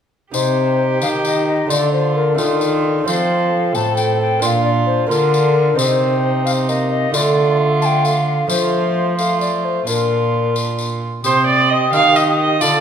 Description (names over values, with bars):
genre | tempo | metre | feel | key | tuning
classical, renaissance-style consort dance | 88 BPM (dotted quarters) | 6/8 | straight | C dorian | A4 = 439 Hz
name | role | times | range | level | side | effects
mellow hollow alto recorder | melody | 0.3-12.8 s | A4 to Eb6 | -20 LUFS | left 6 dB | none
rich viola | second line | 0.3-12.8 s | Eb4 to F5 | -20 LUFS | right 5 dB | none
lute | accompaniment | 0.3-12.8 s | A2 to G4 | -24 LUFS | right 7 dB | none
warm bassoon | accompaniment | 0.3-12.8 s | A3 to G4 | -24 LUFS | left 4 dB | none
rich cello | bass | 0.3-12.8 s | A2 to F3 | -20 LUFS | right 1 dB | none
tambourine | percussion | 0.3-12.8 s | none | -26 LUFS | left 6 dB | none
room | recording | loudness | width
wet recital hall reverb, RT60 1.5 s | minimal, uncompressed stereo recording | -14 LUFS | side -8 dB against mid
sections
0.3-11.2 A section; 11.2-12.8 A section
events
none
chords
0.3 Cm; 1.7 Dm; 3.1 F; 4.4 Bb; 5.8 Cm; 7.1 Dm; 8.5 F; 9.9 Bb; 11.2 Cm